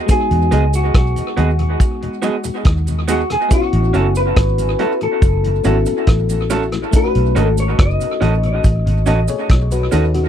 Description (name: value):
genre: lovers rock reggae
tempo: 70 BPM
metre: 4/4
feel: straight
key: E major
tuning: A4 = 442 Hz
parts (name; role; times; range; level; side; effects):
- FM electric piano; accompaniment; 0.0-10.3 s; G#3 to D#5; -24 LUFS; left 5 dB; chorus, phaser, tape echo
- electric guitar through a small old amp; melody; 0.1-8.6 s; F#4 to D#5; -21 LUFS; left 1 dB; tape echo
- vintage drum kit; drums; 0.1-10.3 s; hi-hat, kick drum, rim click; -16 LUFS; equal; tape echo
- cabasa; percussion; 0.1-10.1 s; none; -35 LUFS; right 11 dB; tape echo
- mellow tonewheel organ; accompaniment; 0.3-10.2 s; E2 to D#4; -25 LUFS; left 7 dB; slow rotary speaker
- vintage muted fingered electric bass; bass; 0.3-10.3 s; F#1 to E2; -16 LUFS; equal; none
- electric guitar through a small old amp; stabs; 0.5-10.0 s; B3 to E5; -23 LUFS; right 5 dB; tape echo
room: light reverb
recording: dry, close 1970s-style studio recording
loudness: -13 LUFS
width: side -9 dB against mid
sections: 0.0-10.3 A section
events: none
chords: 0.0 Emaj9; 3.5 A6; 6.9 B9